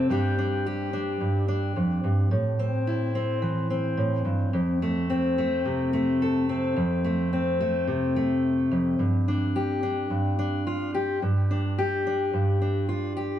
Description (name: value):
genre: folk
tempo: 108 BPM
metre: 4/4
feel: straight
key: F major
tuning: A4 = 440 Hz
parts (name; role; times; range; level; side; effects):
- fingerpicked steel-string acoustic guitar; solo; 0.0-13.4 s; F2 to A4; -23 LUFS; equal; digital delay
room: light reverb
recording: small room ambience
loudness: -23 LUFS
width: side -11 dB against mid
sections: 0.0-13.4 A section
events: none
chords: 0.1 Csus2/G; 2.3 Am; 4.5 F; 9.0 Csus2/G